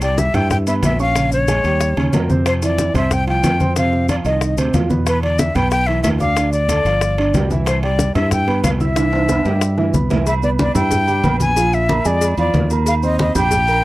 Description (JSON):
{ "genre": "latin, salsa", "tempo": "184 BPM", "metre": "4/4", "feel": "straight", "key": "C major", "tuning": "A4 = 440 Hz", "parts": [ { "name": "breathy bright jazz flute", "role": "melody", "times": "0.0-13.8 s", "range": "B4 to Ab5", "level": "-20 LUFS", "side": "left 2 dB", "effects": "none" }, { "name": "dark grand piano", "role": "accompaniment", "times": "0.0-13.8 s", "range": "B2 to G6", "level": "-22 LUFS", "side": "right 3 dB", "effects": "none" }, { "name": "fingered electric bass", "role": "bass", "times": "0.0-13.8 s", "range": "G1 to G2", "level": "-19 LUFS", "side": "equal", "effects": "none" }, { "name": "bongos and cowbell", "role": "percussion", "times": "0.0-13.7 s", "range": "none", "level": "-27 LUFS", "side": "left 4 dB", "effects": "none" }, { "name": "congas", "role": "percussion", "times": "0.0-13.8 s", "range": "none", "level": "-22 LUFS", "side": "equal", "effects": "none" }, { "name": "maracas", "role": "percussion", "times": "0.0-13.8 s", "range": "none", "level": "-31 LUFS", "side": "left 9 dB", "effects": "none" }, { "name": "timbales and agogo bells", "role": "percussion", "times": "0.0-13.8 s", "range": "none", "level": "-25 LUFS", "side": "right 4 dB", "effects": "none" } ], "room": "little or no reverb", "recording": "dry, close 1970s-style studio recording", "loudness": "-14 LUFS", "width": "side -17 dB against mid", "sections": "0.0-10.3 A section; 10.3-13.8 B section", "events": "drum fill 9.0-10.3", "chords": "0.0 Cmaj7; 1.2 Bbm7; 1.8 Eb9; 2.5 F5; 5.1 E5; 6.4 Dm; 7.0 G5; 7.7 Cmaj7; 11.6 Bb7; 12.9 Eb6" }